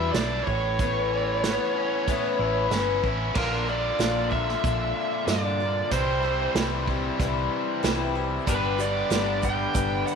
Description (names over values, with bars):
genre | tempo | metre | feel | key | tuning
folk rock and heartland rock | 94 BPM | 4/4 | straight | unclear | A4 = 440 Hz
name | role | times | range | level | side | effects
bluesy overdriven lead guitar | melody | 0.0-10.2 s | Bb4 to G5 | -28 LUFS | right 2 dB | distortion
picked twelve-string acoustic guitar | accompaniment | 0.0-10.2 s | E2 to G4 | -29 LUFS | left 10 dB | none
overdriven electric guitar | riff | 0.0-10.2 s | G2 to G4 | -29 LUFS | right 1 dB | none
hollow-body short-scale fingered electric bass | bass | 0.0-10.0 s | G1 to G2 | -30 LUFS | right 1 dB | none
unplugged drum kit | drums | 0.1-9.9 s | crash cymbal, hi-hat, kick drum, snare drum | -29 LUFS | right 4 dB | none
pedal harmonium | sustained chords | 8.5-10.2 s | G4 to B5 | -37 LUFS | right 10 dB | none
egg shaker | percussion | 8.5-10.2 s | none | -41 LUFS | right 16 dB | none
room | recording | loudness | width
light reverb, small room ambience | 1960s-style stereo with parts hard left and right | -23 LUFS | side -6 dB against mid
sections
0.0-3.4 A section; 3.4-10.2 B section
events
none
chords
0.5 Aadd9; 3.4 Bb; 5.9 C; 8.5 G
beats
0.15 | 0.79 1.44 2.08 2.72 | 3.36 4.00 4.64 5.28 | 5.92 6.56 7.20 7.83 | 8.47 9.11 9.75